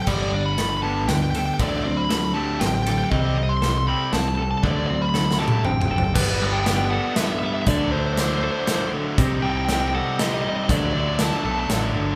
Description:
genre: post-rock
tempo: 119 BPM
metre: 3/4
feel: straight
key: G major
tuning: A4 = 440 Hz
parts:
  - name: overdriven semi-hollow guitar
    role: melody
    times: 0.0-11.7 s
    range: B4 to C6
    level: -28 LUFS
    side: equal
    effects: none
  - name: clean electric guitar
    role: arpeggios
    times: 0.0-12.2 s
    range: C3 to A4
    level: -30 LUFS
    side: equal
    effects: none
  - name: distorted electric guitar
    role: riff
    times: 0.0-12.2 s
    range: G2 to Eb4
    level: -29 LUFS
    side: equal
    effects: overdrive
  - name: growling fingered electric bass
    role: bass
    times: 0.1-12.2 s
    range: G1 to D2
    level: -29 LUFS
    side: equal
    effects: overdrive
  - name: big rock drum kit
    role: drums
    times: 0.1-11.8 s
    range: crash cymbal, hi-hat, kick drum, ride cymbal, snare drum, toms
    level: -28 LUFS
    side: equal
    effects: none
room: moderate large studio reverb, RT60 1.1 s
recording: band playing live in one room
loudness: -22 LUFS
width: mono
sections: 0.0-6.2 A section; 6.2-12.2 B section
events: build-up 0.0-6.2; drum fill 5.1-6.2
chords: 0.1 Gadd9; 1.6 D7sus4; 3.1 C5; 4.6 D7sus4; 6.2 Gadd9; 7.7 D5; 9.2 Cm6; 10.7 Dsus4

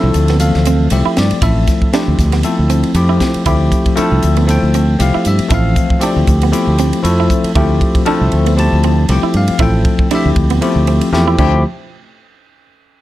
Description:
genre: electric jazz fusion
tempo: 117 BPM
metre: 4/4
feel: swing 55% on 16ths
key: D dorian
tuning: A4 = 442 Hz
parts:
  - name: bell-like tine electric piano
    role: accompaniment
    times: 0.0-11.6 s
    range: E3 to A5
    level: -15 LUFS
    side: left 2 dB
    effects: medium stereo tremolo, lush chorus
  - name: clean electric guitar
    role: stabs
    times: 0.0-11.5 s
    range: B3 to E4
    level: -21 LUFS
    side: right 11 dB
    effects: analog chorus, plate reverb
  - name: fretless electric bass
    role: bass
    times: 0.0-11.6 s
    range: A1 to G2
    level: -13 LUFS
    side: equal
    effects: none
  - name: crisp fusion drum kit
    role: drums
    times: 0.1-11.5 s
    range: crash cymbal, hi-hat, kick drum, ride cymbal, snare drum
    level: -18 LUFS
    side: equal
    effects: none
room: light reverb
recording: dark, warm production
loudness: -10 LUFS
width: side -15 dB against mid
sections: 0.0-11.6 A section; 11.6-13.0 B section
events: drum fill 11.1-11.6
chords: 0.0 Dm11; 11.6 N.C.

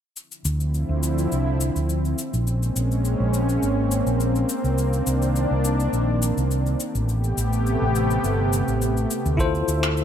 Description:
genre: sunset chillout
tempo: 104 BPM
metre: 4/4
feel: swing 53% on 16ths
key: unclear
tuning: A4 = 442 Hz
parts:
  - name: lush unison pad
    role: sustained chords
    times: 0.6-10.0 s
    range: C3 to E5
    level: -24 LUFS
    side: equal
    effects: chorus
  - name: electronic cabasa and finger snaps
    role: drums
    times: 0.2-10.0 s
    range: none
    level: -31 LUFS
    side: left 4 dB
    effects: overdrive
  - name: mellow fretless electric bass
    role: bass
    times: 0.4-10.0 s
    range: G1 to D2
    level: -22 LUFS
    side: equal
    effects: wide subtle chorus
  - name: bell-like tine electric piano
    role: accompaniment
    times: 9.4-10.0 s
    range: E4 to C5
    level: -23 LUFS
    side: left 3 dB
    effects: fast stereo tremolo, auto-pan, digital delay
  - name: electronic kick drum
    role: drums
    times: 9.4-9.5 s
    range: none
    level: -25 LUFS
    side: equal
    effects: overdrive
room: light reverb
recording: none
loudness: -20 LUFS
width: side -9 dB against mid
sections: 0.2-10.0 A section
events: filter sweep on fretless electric bass 0.2-10.0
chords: 0.2 Dm9; 2.2 Bbm9; 4.5 Cm9; 6.8 Am9; 9.4 Dm9

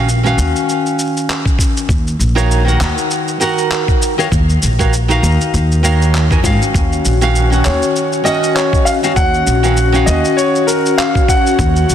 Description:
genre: sunset chillout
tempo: 99 BPM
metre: 4/4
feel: swing 56% on 16ths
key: Eb minor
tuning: A4 = 441 Hz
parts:
  - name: nylon-string guitar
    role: accompaniment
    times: 0.0-11.6 s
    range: Eb3 to Ab5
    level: -17 LUFS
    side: moving between left 5 dB and right 5 dB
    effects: auto-pan, digital delay
  - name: upright bass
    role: bass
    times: 0.0-11.9 s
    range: Bb1 to Ab2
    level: -14 LUFS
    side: equal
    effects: none
  - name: electronic shaker and handclaps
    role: drums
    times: 0.1-11.9 s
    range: none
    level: -22 LUFS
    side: equal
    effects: soft clipping on snare
  - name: electronic kick drum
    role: drums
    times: 1.5-11.7 s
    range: none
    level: -15 LUFS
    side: equal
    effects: none
  - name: bongos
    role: percussion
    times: 6.4-6.6 s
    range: none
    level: -27 LUFS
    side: left 4 dB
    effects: none
  - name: airy breathy pad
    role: sustained chords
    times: 6.7-11.9 s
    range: Bb3 to Gb4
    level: -18 LUFS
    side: left 3 dB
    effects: chorus
  - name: warm concert grand piano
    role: melody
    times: 7.6-11.9 s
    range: Bb4 to Gb5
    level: -16 LUFS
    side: equal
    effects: digital delay
room: moderate lush hall reverb, RT60 2.9 s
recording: dense, heavily limited modern master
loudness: -11 LUFS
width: side -10 dB against mid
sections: 0.0-11.9 A section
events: none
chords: 0.0 Ebm9; 1.9 Ab9sus4 (rootless); 6.7 Ebm9/Bb

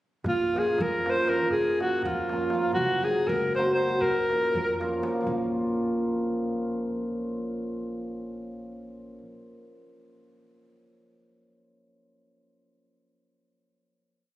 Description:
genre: balkan folk, Balkan wedding band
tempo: 241 BPM (eighths)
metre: 5/8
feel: straight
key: Bb minor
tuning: A4 = 441 Hz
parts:
  - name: darbuka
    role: percussion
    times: 0.2-5.5 s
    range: none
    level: -42 LUFS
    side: equal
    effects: none
  - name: warm alto saxophone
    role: melody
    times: 0.3-4.8 s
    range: F4 to C5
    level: -26 LUFS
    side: equal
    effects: none
  - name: upright bass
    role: bass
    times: 0.3-9.2 s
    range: Gb1 to F2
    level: -38 LUFS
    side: equal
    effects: none
  - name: cimbalom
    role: accompaniment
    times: 0.5-10.3 s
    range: F3 to Gb4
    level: -28 LUFS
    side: equal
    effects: none
room: moderate concert hall reverb, RT60 2.3 s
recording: recorded on a phone in the room, studio reverb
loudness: -24 LUFS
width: side -15 dB against mid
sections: 0.3-5.3 A section; 5.3-7.7 final chord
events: none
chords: 0.3 Bbm; 2.8 Gb; 4.0 Bbm

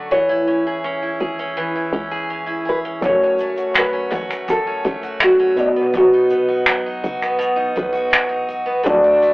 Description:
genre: acoustic pop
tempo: 82 BPM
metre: 4/4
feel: straight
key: unclear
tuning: A4 = 441 Hz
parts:
  - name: nylon-string guitar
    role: melody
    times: 0.0-7.4 s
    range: F#4 to C#5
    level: -17 LUFS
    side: equal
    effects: none
  - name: picked steel-string acoustic guitar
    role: accompaniment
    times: 0.0-9.3 s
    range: F#2 to G#4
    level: -22 LUFS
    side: right 1 dB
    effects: none
  - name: hollow knocking FM bass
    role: bass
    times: 0.0-9.3 s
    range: F#1 to F#2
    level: -23 LUFS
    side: equal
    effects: none
  - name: dark grand piano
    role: accompaniment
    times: 3.0-9.3 s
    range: A3 to D#5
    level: -19 LUFS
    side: equal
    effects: none
  - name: jazz brush drum kit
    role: drums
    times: 3.0-9.3 s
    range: finger snaps, kick drum, shaker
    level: -19 LUFS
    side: equal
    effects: none
  - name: group handclap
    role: percussion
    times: 3.8-8.3 s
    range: none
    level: -30 LUFS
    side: left 1 dB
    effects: none
room: moderate small room reverb, RT60 0.6 s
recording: rough rehearsal-room recording, tube saturation, telephone sound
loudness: -16 LUFS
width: side -23 dB against mid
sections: 0.0-9.3 A section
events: none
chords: 0.1 C#m; 3.0 F#m; 5.6 B

